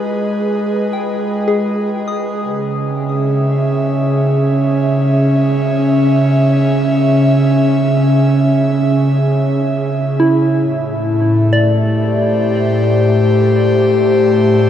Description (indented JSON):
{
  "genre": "ambient",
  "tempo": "free time",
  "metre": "none",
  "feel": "none",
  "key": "unclear",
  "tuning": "A4 = 439 Hz",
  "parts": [
    { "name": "airy breathy pad", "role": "sustained chords", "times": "0.0-14.7 s", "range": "A2 to Fb5", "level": "-12 LUFS", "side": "equal", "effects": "chorus" },
    { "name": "soft synth bell", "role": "arpeggios", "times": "0.0-14.7 s", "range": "Fb4 to Eb6", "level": "-20 LUFS", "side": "equal", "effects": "chorus, phaser, diffuse ambient delay" }
  ],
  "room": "wet huge ambient reverb, RT60 8.8 s",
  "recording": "dark, warm production",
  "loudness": "-12 LUFS",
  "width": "side -10 dB against mid",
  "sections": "0.0-14.7 A section",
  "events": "fade-in on synth bell 0.0-14.7",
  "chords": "0.0 Abm; 2.4 Dbm; 10.6 Am7"
}